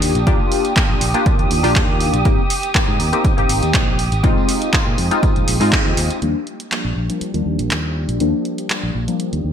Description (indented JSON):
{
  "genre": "filtered disco house",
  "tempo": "121 BPM",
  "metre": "4/4",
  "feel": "straight",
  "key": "Eb major",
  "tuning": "A4 = 440 Hz",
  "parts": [
    { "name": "funky polysynth comp", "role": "accompaniment", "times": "0.0-9.5 s", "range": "F3 to G4", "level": "-20 LUFS", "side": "left 2 dB", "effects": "chorus, phaser, vintage 12-bit sampler grit, sidechain pumping, low-pass filter" },
    { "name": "muted chamber violin section", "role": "sustained chords", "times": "0.0-9.5 s", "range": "G4 to Eb6", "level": "-26 LUFS", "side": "right 3 dB", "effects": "vintage 12-bit sampler grit, sidechain pumping, low-pass filter" },
    { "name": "modern bright fingered electric bass", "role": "bass", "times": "0.0-9.5 s", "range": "Ab1 to Bb2", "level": "-21 LUFS", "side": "equal", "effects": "sidechain pumping, low-pass filter" },
    { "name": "punchy analog drum machine", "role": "drums", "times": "0.0-9.4 s", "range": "handclaps, hi-hat", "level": "-22 LUFS", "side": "right 1 dB", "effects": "sidechain pumping on hats, gated reverb" },
    { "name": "tambourine", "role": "percussion", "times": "0.1-9.4 s", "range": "none", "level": "-41 LUFS", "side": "right 1 dB", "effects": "none" },
    { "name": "electronic kick drum", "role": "drums", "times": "0.3-5.8 s", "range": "none", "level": "-17 LUFS", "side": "equal", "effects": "none" }
  ],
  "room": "light reverb, digital ambience",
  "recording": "bright 1980s-style digital production",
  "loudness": "-15 LUFS",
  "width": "side -8 dB against mid",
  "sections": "0.0-6.2 A section; 6.2-9.5 B section",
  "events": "band accent 5.7; filter sweep 6.2-9.5",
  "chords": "0.0 Ebmaj7; 2.3 Abmaj7; 4.0 Bb7sus4; 6.2 Ebmaj7"
}